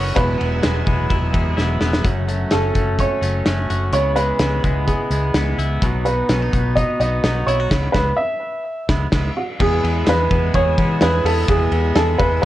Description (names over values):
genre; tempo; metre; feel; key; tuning
jangly indie pop; 127 BPM; 4/4; straight; E major; A4 = 437 Hz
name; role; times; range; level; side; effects
warm upright piano; melody; 0.0-12.4 s; F#4 to E5; -21 LUFS; right 1 dB; digital delay
electric guitar through a small old amp; accompaniment; 0.0-12.4 s; E2 to F#4; -26 LUFS; right 4 dB; none
ensemble organ-string; sustained chords; 0.0-2.0, 9.6-12.4 s; E4 to E6; -32 LUFS; equal; ensemble chorus
direct-recorded clean electric guitar; arpeggios; 0.0-12.4 s; E2 to G#4; -26 LUFS; left 5 dB; none
vintage muted fingered electric bass; bass; 0.0-12.4 s; E1 to E3; -21 LUFS; equal; none
loose indie drum kit; drums; 0.2-12.3 s; crash cymbal, hi-hat, kick drum, ride cymbal, snare drum; -22 LUFS; equal; none
room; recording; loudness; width
light reverb, small room ambience; worn, warbling old tape, cassette tape, warbly pitch drift; -16 LUFS; side -14 dB against mid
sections
0.0-2.0 A section; 2.0-9.6 B section; 9.6-12.4 A section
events
drum fill 1.6-2.0; band accent 7.7-9.6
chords
0.2 Eadd9; 2.0 F#m; 3.9 C#m7; 5.8 B; 7.7 C#m7; 9.6 E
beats
| 0.16 0.64 1.11 1.58 | 2.05 2.52 2.99 3.46 | 3.94 4.41 4.88 5.35 | 5.82 6.30 6.77 7.24 | 7.71 8.18 8.66 9.13 | 9.60 10.07 10.54 11.01 | 11.48 11.96 12.43